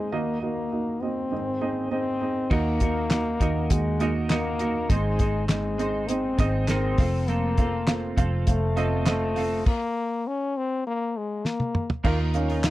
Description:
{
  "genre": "piano-driven pop",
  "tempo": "101 BPM",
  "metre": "4/4",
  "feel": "straight",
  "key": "unclear",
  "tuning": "A4 = 440 Hz",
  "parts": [
    { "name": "French horn with straight mute", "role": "melody", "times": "0.0-12.7 s", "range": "Ab3 to Eb4", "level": "-28 LUFS", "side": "left 3 dB", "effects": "none" },
    { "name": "dark upright piano", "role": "accompaniment", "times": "0.0-12.7 s", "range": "Ab1 to Gb5", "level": "-30 LUFS", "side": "right 5 dB", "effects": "none" },
    { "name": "twelve-string electric guitar", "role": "riff", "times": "2.5-12.7 s", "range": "Ab2 to C5", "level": "-33 LUFS", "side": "right 2 dB", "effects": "analog chorus" },
    { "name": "vintage muted picked electric bass", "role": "bass", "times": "2.5-12.7 s", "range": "F1 to Eb2", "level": "-27 LUFS", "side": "equal", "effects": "none" },
    { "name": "damped 70s drum kit", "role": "drums", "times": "2.5-12.7 s", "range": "crash cymbal, handclaps, hi-hat, kick drum, snare drum, toms", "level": "-24 LUFS", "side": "equal", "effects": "none" }
  ],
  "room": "little or no reverb",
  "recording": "dry, close 1970s-style studio recording",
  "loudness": "-23 LUFS",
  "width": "side -16 dB against mid",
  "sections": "0.0-2.5 A section; 2.5-12.0 B section",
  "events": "stop 9.7-12.0; drum fill 11.4-12.0",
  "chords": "0.1 Ebm; 1.3 Ab; 2.5 Ebm; 4.9 Ab; 7.0 F; 9.7 N.C.; 12.0 Ebsus2"
}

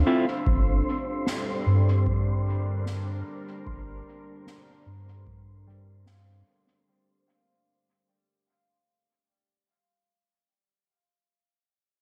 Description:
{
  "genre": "ambient dub",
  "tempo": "75 BPM",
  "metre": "4/4",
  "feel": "swing 57% on 16ths",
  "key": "unclear",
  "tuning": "A4 = 440 Hz",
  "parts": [
    { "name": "deep dark ambient pad", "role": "sustained chords", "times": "0.0-6.9 s", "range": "G3 to E6", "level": "-37 LUFS", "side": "equal", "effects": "chorus, built-in reverb" },
    { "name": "concert harp", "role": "arpeggios", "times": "0.0-9.6 s", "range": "G3 to C6", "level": "-59 LUFS", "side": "equal", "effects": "none" },
    { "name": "soft dub sub bass", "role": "bass", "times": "0.0-6.4 s", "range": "G1 to G2", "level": "-26 LUFS", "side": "equal", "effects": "none" },
    { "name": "wind-like tuned noise texture", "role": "texture", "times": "0.0-6.9 s", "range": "C4 to C5", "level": "-38 LUFS", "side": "equal", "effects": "built-in reverb" },
    { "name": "electronic kick drum", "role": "drums", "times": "0.5-5.4 s", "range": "none", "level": "-31 LUFS", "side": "equal", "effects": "none" },
    { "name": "snare drum", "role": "drums", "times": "1.3-6.2 s", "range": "none", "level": "-38 LUFS", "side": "equal", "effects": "dub echo" }
  ],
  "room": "light reverb, small room ambience",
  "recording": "none",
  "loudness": "-26 LUFS",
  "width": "mono",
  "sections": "0.0-6.9 A section",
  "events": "fade-out 0.0-6.9",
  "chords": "0.5 Gm9"
}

